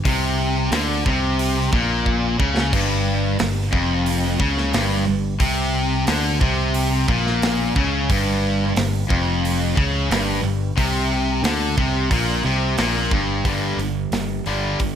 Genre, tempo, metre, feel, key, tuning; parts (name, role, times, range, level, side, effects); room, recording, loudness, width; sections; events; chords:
hard rock; 89 BPM; 4/4; straight; G minor; A4 = 440 Hz
modern bright picked electric bass; bass; 0.0-15.0 s; F1 to D2; -24 LUFS; equal
cranked stack guitar; riff; 0.1-15.0 s; F2 to G3; -23 LUFS; left 9 dB; overdrive
high-gain distorted guitar; riff; 0.1-15.0 s; F2 to G3; -24 LUFS; right 10 dB; distortion
tight metal drum kit; drums; 0.1-15.0 s; crash cymbal, hi-hat, kick drum, snare drum; -24 LUFS; right 1 dB
light reverb, small room ambience; -18 LUFS; side -9 dB against mid
0.0-13.5 A section; 13.5-15.0 B section
drum fill 2.1-2.7
0.0 Gm; 13.5 G5